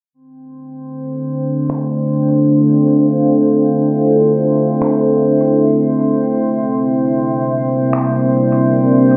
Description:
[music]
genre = ambient dub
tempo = free time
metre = none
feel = none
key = D minor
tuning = A4 = 439 Hz
[part]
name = deep dark ambient pad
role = sustained chords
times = 1.1-9.2 s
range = C4 to F5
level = -15 LUFS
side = equal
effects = chorus, built-in reverb
[part]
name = drifting glass-harmonics texture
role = texture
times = 0.4-9.2 s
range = C4 to C5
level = -22 LUFS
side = equal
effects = chorus, built-in reverb
[part]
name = electronic finger snaps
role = drums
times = 1.7-8.1 s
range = none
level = -32 LUFS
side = equal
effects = dub echo
[sound]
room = moderate spring reverb, RT60 2.3 s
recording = dark, warm production, low-pass filter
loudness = -14 LUFS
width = mono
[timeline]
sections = 0.1-9.2 A section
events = filter sweep on ambient pad 0.1-9.2; filter sweep 0.1-9.2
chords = 0.1 Dm7; 6.4 C7

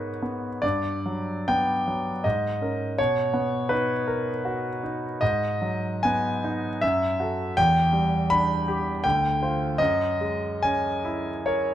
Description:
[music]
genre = classical, impressionist solo piano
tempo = 68-83 BPM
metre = 3/4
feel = rubato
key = unclear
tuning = A4 = 440 Hz
[part]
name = bright concert grand piano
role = solo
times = 0.0-11.7 s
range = D2 to B5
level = -23 LUFS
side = equal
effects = none
[sound]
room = light reverb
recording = close, detailed microphones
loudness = -23 LUFS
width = side -11 dB against mid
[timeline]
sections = 0.0-11.7 A section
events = none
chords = 0.0 G#madd9; 0.6 Gmaj7; 2.2 G#sus24; 3.0 Bmaj7; 5.2 G#m7; 6.8 F#m7; 7.6 Em7; 9.0 Dm7; 9.8 F#13

